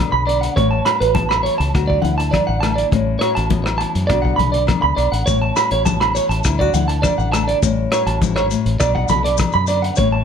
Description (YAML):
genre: highlife guitar band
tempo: 102 BPM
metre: 4/4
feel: straight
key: A major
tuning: A4 = 440 Hz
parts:
  - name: nylon-string guitar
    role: accompaniment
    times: 0.0-10.2 s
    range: G#2 to A4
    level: -23 LUFS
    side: left 9 dB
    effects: none
  - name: fingered electric bass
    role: bass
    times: 0.0-10.2 s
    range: A1 to F#2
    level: -21 LUFS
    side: equal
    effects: none
  - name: electric guitar at the edge of break-up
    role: arpeggios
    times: 0.1-10.2 s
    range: B4 to B5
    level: -19 LUFS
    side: right 5 dB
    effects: tape echo
  - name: vintage drum kit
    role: drums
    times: 0.3-10.1 s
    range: hi-hat, kick drum, rim click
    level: -23 LUFS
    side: equal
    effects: none
  - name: agogo bells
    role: percussion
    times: 0.3-9.8 s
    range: none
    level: -29 LUFS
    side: left 11 dB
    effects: none
  - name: congas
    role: percussion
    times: 0.6-10.1 s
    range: none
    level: -25 LUFS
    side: left 7 dB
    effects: none
  - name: maracas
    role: percussion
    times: 5.3-10.1 s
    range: none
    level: -30 LUFS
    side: left 15 dB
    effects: none
room: light reverb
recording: none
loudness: -15 LUFS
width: side -7 dB against mid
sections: 0.0-10.2 A section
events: none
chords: 0.0 Bm; 0.6 Aadd9; 1.7 D; 2.9 Aadd9; 4.1 Bm; 5.3 Aadd9; 6.4 D; 7.6 A; 8.8 Bm